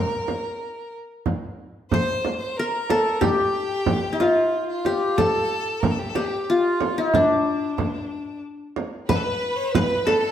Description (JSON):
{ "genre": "Arabic maqam ensemble", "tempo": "92 BPM", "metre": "3/4", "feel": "straight", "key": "unclear", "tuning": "A4 = 440 Hz", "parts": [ { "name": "qanun", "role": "melody", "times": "0.0-10.3 s", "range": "D4 to C5", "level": "-22 LUFS", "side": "left 1 dB", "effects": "none" }, { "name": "clear violin", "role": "second line", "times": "0.0-10.3 s", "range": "D4 to C#5-48c", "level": "-29 LUFS", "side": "left 2 dB", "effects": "none" }, { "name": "frame drum", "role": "percussion", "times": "0.3-10.2 s", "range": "none", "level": "-25 LUFS", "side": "right 3 dB", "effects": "none" }, { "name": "bright studio violin section", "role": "second line", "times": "9.1-10.3 s", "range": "A4 to B4", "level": "-28 LUFS", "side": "right 3 dB", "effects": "none" } ], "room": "wet stone room reverb, RT60 1.3 s", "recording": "band playing live in one room", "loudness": "-20 LUFS", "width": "side -10 dB against mid", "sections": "0.0-9.1 A section; 9.1-10.3 B section", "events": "none", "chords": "none", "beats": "0.62 | 1.27 1.92 2.57 | 3.22 3.88 4.53 | 5.18 5.83 6.48 | 7.13 7.79 8.44 | 9.09 9.74" }